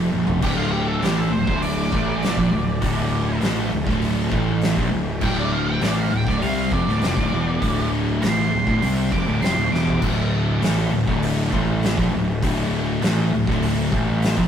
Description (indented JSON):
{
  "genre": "stoner and doom metal",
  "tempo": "100 BPM",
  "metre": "4/4",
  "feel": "straight",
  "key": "D minor",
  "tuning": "A4 = 440 Hz",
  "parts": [
    { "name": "thick fuzz guitar", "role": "riff", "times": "0.0-14.5 s", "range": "D2 to C4", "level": "-24 LUFS", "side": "left 4 dB", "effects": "distortion" },
    { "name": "thick fuzz guitar", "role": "riff", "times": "0.0-14.5 s", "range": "D2 to C4", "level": "-26 LUFS", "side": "right 4 dB", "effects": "distortion" },
    { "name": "fuzz picked electric bass", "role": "bass", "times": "0.0-14.5 s", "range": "D1 to C2", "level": "-26 LUFS", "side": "equal", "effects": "overdrive, tube saturation" },
    { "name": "oversized low-tuned drum kit", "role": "drums", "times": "0.1-14.5 s", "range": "crash cymbal, hi-hat, kick drum, snare drum, toms", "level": "-25 LUFS", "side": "equal", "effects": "none" },
    { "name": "octave-fuzz lead guitar", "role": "melody", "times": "0.4-10.0 s", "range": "F4 to D6", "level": "-27 LUFS", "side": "right 3 dB", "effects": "wah, distortion" },
    { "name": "sludgy distorted guitar", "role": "riff", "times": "0.4-14.5 s", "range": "D2 to C4", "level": "-27 LUFS", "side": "equal", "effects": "overdrive" }
  ],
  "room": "moderate stone room reverb, RT60 1.3 s",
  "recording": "rough rehearsal-room recording, tube saturation",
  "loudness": "-18 LUFS",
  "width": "side -8 dB against mid",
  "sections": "0.4-10.0 A section; 10.0-14.5 B section",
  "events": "drum fill 0.1-0.4, 9.7-10.0; lead electric guitar solo 0.4-10.0",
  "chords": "0.4 Dm",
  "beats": "| 0.42 1.02 1.62 2.22 | 2.82 3.42 4.02 4.62 | 5.22 5.82 6.42 7.02 | 7.62 8.22 8.82 9.42 | 10.02 10.62 11.22 11.82 | 12.42 13.02 13.62 14.22"
}